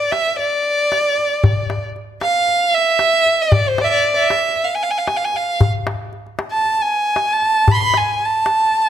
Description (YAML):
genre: Arabic maqam ensemble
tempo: 115 BPM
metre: 4/4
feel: straight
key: D maqam nikriz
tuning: A4 = 441 Hz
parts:
  - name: rich violin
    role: melody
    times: 0.0-8.9 s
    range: C5 to C6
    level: -15 LUFS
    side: right 1 dB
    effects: none
  - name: darbuka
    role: percussion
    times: 0.1-8.8 s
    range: none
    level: -18 LUFS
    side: left 2 dB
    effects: none
room: moderate recital hall reverb, RT60 1.4 s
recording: close, detailed microphones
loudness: -14 LUFS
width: side -10 dB against mid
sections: 0.0-8.9 A section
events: none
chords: none